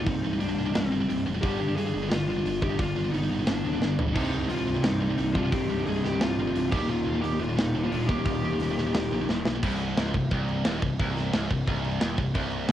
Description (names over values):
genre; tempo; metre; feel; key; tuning
heavy metal; 176 BPM; 4/4; straight; C minor; A4 = 441 Hz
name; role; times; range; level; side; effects
high-gain lead guitar; melody; 0.0-9.2 s; C4 to Ab4; -31 LUFS; left 1 dB; distortion, tape echo
high-gain lead guitar; second line; 0.0-9.2 s; G3 to Eb4; -38 LUFS; right 2 dB; none
heavy high-gain guitar; riff; 0.0-12.7 s; C2 to G3; -32 LUFS; left 5 dB; distortion, cassette tape
heavy high-gain guitar; riff; 0.0-12.7 s; C2 to G3; -34 LUFS; right 7 dB; distortion, cassette tape
fuzz picked electric bass; bass; 0.0-12.7 s; C1 to G2; -32 LUFS; equal; overdrive
tight metal drum kit; drums; 0.1-12.7 s; crash cymbal, hi-hat, kick drum, snare drum, toms; -30 LUFS; right 1 dB; cassette tape
overdriven electric guitar; riff; 4.1-12.7 s; C2 to Eb3; -31 LUFS; right 1 dB; cassette tape
room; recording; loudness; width
light reverb; home recording on cassette; -24 LUFS; side -11 dB against mid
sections
0.0-9.6 A section; 9.6-12.7 B section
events
half time 0.0-9.6; drum fill 3.8-4.2, 9.3-9.6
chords
0.0 Cm; 1.4 G; 4.2 Cm; 6.7 Eb; 9.6 Cm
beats
| 0.06 0.40 0.74 1.09 | 1.43 1.77 2.11 2.45 | 2.79 3.13 3.48 3.82 | 4.16 4.50 4.84 5.18 | 5.53 5.87 6.21 6.55 | 6.89 7.23 7.57 7.92 | 8.26 8.60 8.94 9.28 | 9.62 9.96 10.31 10.65 | 10.99 11.33 11.67 12.02 | 12.36 12.70